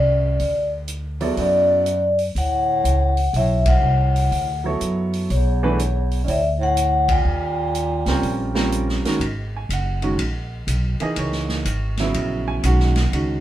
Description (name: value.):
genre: modal jazz.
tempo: 123 BPM.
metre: 4/4.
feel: swing 66% on 8ths.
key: G# minor from 9.2 s.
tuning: A4 = 440 Hz.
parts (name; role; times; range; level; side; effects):
vibraphone with soft mallets; melody; 0.0-8.7 s; C#5 to G5; -21 LUFS; left 2 dB; none.
clear bass clarinet; second line; 0.0-8.7 s; E2 to A#2; -27 LUFS; right 3 dB; none.
upright bass; bass; 0.0-13.4 s; F#1 to F#2; -22 LUFS; equal; none.
swinging big-band drum kit; drums; 0.4-13.3 s; hi-hat, kick drum, ride cymbal, snare drum; -28 LUFS; right 1 dB; none.
warm grand piano; accompaniment; 1.2-13.4 s; C#3 to G#5; -24 LUFS; right 2 dB; none.
room: moderate studio reverb, RT60 0.6 s.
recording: band playing live in one room.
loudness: -18 LUFS.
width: side -12 dB against mid.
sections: 0.0-9.2 A section; 9.2-13.4 B section.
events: band accent 3.6, 7.0.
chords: 0.0 Bm11; 7.3 D#13; 9.2 G#9sus4.